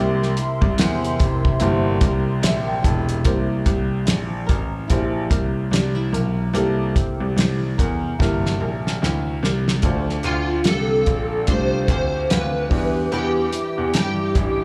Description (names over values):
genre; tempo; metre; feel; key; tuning
indie pop, bedroom pop; 73 BPM; 4/4; swing 60% on 16ths; unclear; A4 = 438 Hz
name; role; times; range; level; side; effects
flamenco guitar; accompaniment; 0.0-14.6 s; C3 to C5; -32 LUFS; equal; lush chorus, vibrato effect, slapback echo
warm upright piano; accompaniment; 0.0-14.6 s; G3 to A5; -30 LUFS; equal; slapback echo
hollow soft pad; sustained chords; 0.0-3.2, 9.8-14.6 s; C4 to D6; -33 LUFS; equal; chorus
clear concert grand piano; bass; 0.0-14.6 s; E1 to G2; -25 LUFS; equal; none
cloth-damped thuddy drum kit; drums; 0.2-14.6 s; hi-hat, kick drum, snare drum; -23 LUFS; equal; none
overdriven slide guitar; melody; 10.3-14.6 s; F4 to C5; -25 LUFS; equal; ensemble chorus, slapback echo
room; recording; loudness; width
light reverb, studio ambience; live gig heard through the venue's PA, club reverb; -21 LUFS; mono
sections
0.0-3.3 A section; 3.3-9.8 B section; 9.8-14.6 C section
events
upright piano fill 2.0-3.3; drum fill 8.2-9.8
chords
0.0 C7; 9.8 Dm7; 12.7 Em7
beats
0.79 1.61 2.44 | 3.26 4.08 4.90 5.72 | 6.55 7.37 8.19 9.01 | 9.83 10.66 11.48 12.30 | 13.12 13.94